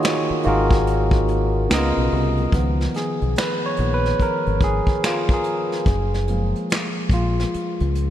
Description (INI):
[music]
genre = R&B, neo-soul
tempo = 72 BPM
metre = 4/4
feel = swing 63% on 16ths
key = unclear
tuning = A4 = 440 Hz
[part]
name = barky tine electric piano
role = accompaniment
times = 0.0-8.1 s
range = C#3 to D#5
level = -21 LUFS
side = equal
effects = none
[part]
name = vintage brush drum kit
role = drums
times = 0.0-8.1 s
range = finger snaps, hi-hat, kick drum, snare drum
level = -23 LUFS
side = equal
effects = none
[part]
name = deep dub fingered electric bass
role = bass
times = 0.3-8.1 s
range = F#1 to C#2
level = -22 LUFS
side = equal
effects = none
[sound]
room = moderate huge ambient reverb, RT60 4.8 s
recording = dreamy mix soaked in reverb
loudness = -18 LUFS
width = side -11 dB against mid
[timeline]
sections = 0.0-2.5 A section; 2.5-8.1 B section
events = tine electric piano solo 2.5-8.1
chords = 0.0 D#m11; 1.7 C#13; 2.5 C#9; 5.9 F#maj9